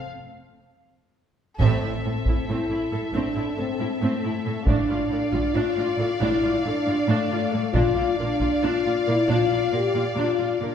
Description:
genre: cinematic, epic orchestral film score.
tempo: 273 BPM (eighths).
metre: 7/8.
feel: straight.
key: A phrygian.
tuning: A4 = 440 Hz.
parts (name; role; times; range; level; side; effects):
rich symphonic violin section; melody; 0.0-10.7 s; E5 to F5; -34 LUFS; left 4 dB; none.
mellow French horn section; sustained chords; 0.0-10.7 s; A3 to G4; -24 LUFS; left 3 dB; none.
rich symphonic violin section; second line; 1.6-10.7 s; A4 to D5; -32 LUFS; left 1 dB; none.
warm symphonic viola section; accompaniment; 1.6-10.7 s; C4 to Bb4; -31 LUFS; right 2 dB; none.
clear symphonic double bass section; bass; 1.6-9.5 s; A1 to Bb1; -30 LUFS; right 4 dB; none.
warm symphonic cello section; bass; 1.6-10.7 s; A2 to Bb2; -28 LUFS; right 3 dB; none.
taiko ensemble; drums; 1.6-8.6 s; none; -26 LUFS; right 1 dB; none.
room: wet scoring stage reverb, RT60 1.7 s.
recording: recorded in a church or concert hall.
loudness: -21 LUFS.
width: side -8 dB against mid.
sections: 0.0-1.6 A section; 1.6-10.7 B section.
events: build-up 0.0-1.6; break 0.1-1.6; band accent 1.6-2.0.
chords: 0.0 N.C.; 1.6 Am; 4.7 Dm/A; 7.7 Bb.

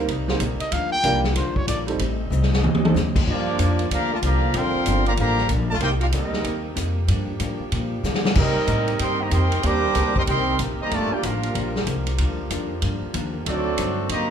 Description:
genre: jazz, big band swing.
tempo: 188 BPM.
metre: 4/4.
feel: swing 63% on 8ths.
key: G minor.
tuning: A4 = 440 Hz.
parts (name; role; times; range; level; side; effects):
clear grand piano; accompaniment; 0.0-2.9 s; F#3 to C5; -27 LUFS; right 6 dB; none.
warm saxophone section; sustained chords; 0.0-14.3 s; C3 to Eb5; -33 LUFS; left 1 dB; none.
upright bass; bass; 0.0-14.3 s; G1 to D3; -24 LUFS; equal; none.
vintage hollow-body jazz guitar; accompaniment; 0.1-14.3 s; G2 to G4; -32 LUFS; left 4 dB; none.
swinging big-band drum kit; drums; 0.1-14.2 s; crash cymbal, hi-hat, kick drum, ride cymbal, snare drum, toms; -26 LUFS; equal; none.
warm trumpet; melody; 0.6-1.8 s; C5 to G5; -24 LUFS; left 1 dB; none.
clear trumpet section; melody; 3.3-14.3 s; Bb3 to D6; -25 LUFS; equal; none.
bright trombone section; second line; 3.3-14.3 s; D3 to Bb4; -26 LUFS; right 3 dB; none.
room: moderate large studio reverb, RT60 1.2 s.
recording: minimal, uncompressed stereo recording.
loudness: -20 LUFS.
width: side -8 dB against mid.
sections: 0.0-3.3 A section; 3.3-14.3 B section.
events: trumpet solo 0.0-3.3; drum fill 2.3-2.9, 8.0-8.4.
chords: 0.0 Cm7; 0.7 Gm7; 2.0 Am7b5; 2.6 D7b9; 3.3 Gm7; 5.8 Cm7; 7.1 Gm7; 8.4 Cm7; 10.9 Gm7; 13.5 D7b9.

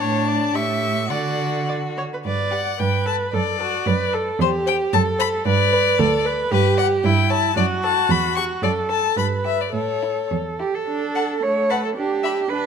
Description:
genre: quick classical-period movement for string quartet.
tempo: 104-115 BPM.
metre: 2/4.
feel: rubato.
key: G major, D major from 6.5 s.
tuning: A4 = 440 Hz.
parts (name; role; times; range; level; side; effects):
clear violin; melody; 0.0-12.4 s; B4 to C#6; -23 LUFS; left 12 dB; none.
rich violin; second line; 0.0-12.4 s; D4 to F#5; -29 LUFS; left 3 dB; none.
rich viola; accompaniment; 0.0-12.7 s; A3 to E5; -23 LUFS; right 2 dB; none.
rich cello; bass; 0.0-12.7 s; D2 to C#5; -23 LUFS; right 4 dB; none.
room: moderate recital hall reverb, RT60 1.8 s.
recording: none.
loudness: -18 LUFS.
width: side -7 dB against mid.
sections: 0.0-2.2 A section; 2.2-10.9 B section; 10.9-12.7 A section.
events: none.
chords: 0.0 D5/A; 0.6 A7; 1.1 D; 2.2 G; 2.8 Gadd9; 3.3 D/F#; 4.4 C/E; 4.9 F#m; 5.5 G; 7.0 A7/G; 7.6 D/F# (rootless); 8.1 C#dim/E (rootless); 8.6 D/F# (rootless); 9.2 G; 9.7 A; 10.9 D; 12.0 Em7/D (rootless).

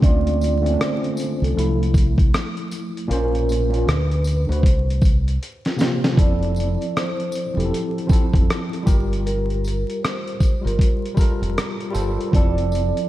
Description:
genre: lo-fi hip hop.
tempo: 78 BPM.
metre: 4/4.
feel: swing 61% on 16ths.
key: F major.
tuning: A4 = 441 Hz.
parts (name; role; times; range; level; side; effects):
vibraphone with soft mallets; melody; 0.0-13.1 s; A4 to D5; -27 LUFS; right 3 dB; tape echo.
barky tine electric piano; accompaniment; 0.0-13.1 s; Bb2 to C5; -25 LUFS; equal; overdrive, fast stereo tremolo, cassette tape.
deep dub fingered electric bass; bass; 0.0-12.9 s; E1 to D2; -21 LUFS; equal; none.
dusty soul sampler-style drum kit; drums; 0.0-13.1 s; hi-hat, kick drum, rim click, snare drum; -19 LUFS; equal; none.
tambourine; percussion; 0.4-12.9 s; none; -44 LUFS; left 3 dB; none.
room: light reverb.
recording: vinyl crackle.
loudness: -18 LUFS.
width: side -14 dB against mid.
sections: 0.0-6.2 A section; 6.2-13.1 B section.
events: drum fill 5.4-6.2.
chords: 0.0 Dm7; 1.6 Fmaj7/C; 3.1 Bbmadd9; 3.9 D6; 4.6 C7sus4; 6.2 Fmaj7; 8.9 Gm9; 12.3 Fmaj7.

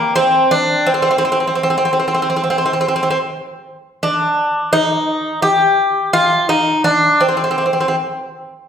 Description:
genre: turkish.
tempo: 170 BPM (eighths).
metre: 9/8.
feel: straight.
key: C makam nihavent.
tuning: A4 = 443 Hz.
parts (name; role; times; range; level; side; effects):
Greek bouzouki; solo; 0.0-7.9 s; Bb3 to G4; -13 LUFS; equal; none.
room: wet recital hall reverb, RT60 1.4 s.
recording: heard from further back in the room.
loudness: -13 LUFS.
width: side -8 dB against mid.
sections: 0.0-4.0 A section; 4.0-8.7 B section.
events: none.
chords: none.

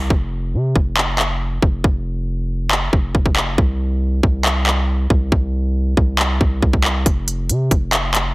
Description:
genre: hip hop, trap.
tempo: 138 BPM.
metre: 4/4.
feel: half-time.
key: unclear.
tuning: A4 = 442 Hz.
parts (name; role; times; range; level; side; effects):
long sustained 808-style bass; bass; 0.0-8.3 s; F1 to C3; -20 LUFS; equal; none.
trap drum kit; drums; 0.1-8.2 s; handclaps, hi-hat, kick drum; -16 LUFS; equal; none.
room: digital ambience.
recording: heavily compressed radio sound, multiband compression.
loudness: -16 LUFS.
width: side -22 dB against mid.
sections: 0.1-8.3 A section.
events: hi-hats muted 0.1-7.1.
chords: none.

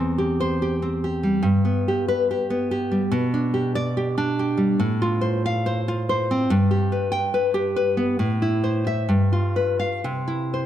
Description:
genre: romantic piece for solo classical guitar.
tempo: 61-73 BPM.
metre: 2/4.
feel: rubato.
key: unclear.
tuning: A4 = 441 Hz.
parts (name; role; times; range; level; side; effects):
nylon-string guitar; solo; 0.0-10.7 s; E2 to G5; -20 LUFS; equal; none.
room: moderate concert hall reverb, RT60 2.3 s.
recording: none.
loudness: -20 LUFS.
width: side -11 dB against mid.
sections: 0.0-10.7 A section.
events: none.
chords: 0.0 C/E; 1.4 G; 3.1 G/B; 4.8 F/A; 6.5 G; 8.2 Am; 9.1 G7; 10.0 C.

